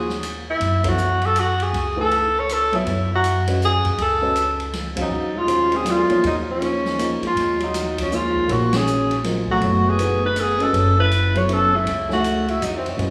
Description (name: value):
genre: modal jazz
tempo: 160 BPM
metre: 3/4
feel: swing 64% on 8ths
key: unclear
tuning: A4 = 440 Hz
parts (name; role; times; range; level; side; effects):
- warm tenor saxophone; melody; 0.0-13.1 s; C4 to Db5; -23 LUFS; equal; none
- dark upright piano; accompaniment; 0.0-13.1 s; Eb3 to F5; -29 LUFS; equal; none
- upright bass; bass; 0.0-13.1 s; Gb1 to Gb2; -27 LUFS; equal; none
- open jazz drum kit; drums; 0.1-13.1 s; hi-hat, kick drum, ride cymbal, snare drum; -33 LUFS; equal; none
- breathy trombone; second line; 5.0-13.1 s; Eb3 to Fb4; -29 LUFS; equal; none
room: wet recital hall reverb, RT60 1.8 s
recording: recorded in a church or concert hall, studio ambience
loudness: -20 LUFS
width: mono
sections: 0.0-13.1 A section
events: band accent 0.8, 4.9, 8.7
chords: 0.0 Ebsus4; 0.6 Gbmadd9; 5.1 Ebm11; 9.6 Gbm11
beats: 0.23 | 0.60 0.98 1.35 | 1.73 2.11 2.48 | 2.86 3.23 3.61 | 3.98 4.36 4.73 | 5.11 5.48 5.86 | 6.23 6.61 6.99 | 7.36 7.74 8.11 | 8.48 8.86 9.23 | 9.61 9.98 10.36 | 10.73 11.11 11.48 | 11.86 12.24 12.61 | 12.99